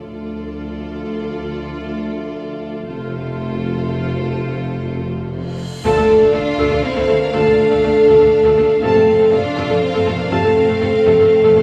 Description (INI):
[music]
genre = cinematic, epic orchestral film score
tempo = 121 BPM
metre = 3/4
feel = straight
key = D minor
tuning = A4 = 439 Hz
[part]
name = rich symphonic violin section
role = melody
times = 0.0-11.6 s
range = C5 to F5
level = -33 LUFS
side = equal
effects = none
[part]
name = rich studio violin section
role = second line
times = 0.0-11.6 s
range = C4 to A4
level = -30 LUFS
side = equal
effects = none
[part]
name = clear symphonic viola section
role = accompaniment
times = 0.0-11.6 s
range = A3 to A4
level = -23 LUFS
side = equal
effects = none
[part]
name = clear trombone section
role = sustained chords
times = 0.0-10.5 s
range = C3 to F4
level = -32 LUFS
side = equal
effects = none
[part]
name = mellow French horn section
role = sustained chords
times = 0.0-11.6 s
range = C4 to D5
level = -17 LUFS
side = equal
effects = none
[part]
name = clear symphonic double bass section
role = bass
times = 0.0-11.6 s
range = F1 to F2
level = -29 LUFS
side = equal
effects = none
[part]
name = mellow tuba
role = bass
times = 0.0-11.6 s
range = F1 to D2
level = -29 LUFS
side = equal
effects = none
[part]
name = rich symphonic cello section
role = bass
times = 0.0-11.6 s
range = D2 to D4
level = -29 LUFS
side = equal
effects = none
[part]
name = cymbal swell and impact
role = sound effects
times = 5.4-7.3 s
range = none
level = -36 LUFS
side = equal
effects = none
[part]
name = clear trumpet section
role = stabs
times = 5.9-10.5 s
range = A5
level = -28 LUFS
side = equal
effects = none
[sound]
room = wet recital hall reverb, RT60 1.4 s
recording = recorded in a church or concert hall, studio reverb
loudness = -16 LUFS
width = mono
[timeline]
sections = 0.0-5.8 A section; 5.8-11.6 B section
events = cymbal swell 5.4-5.8; impact 5.8-7.3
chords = 0.0 Dm; 2.9 F; 5.8 Dm; 8.8 F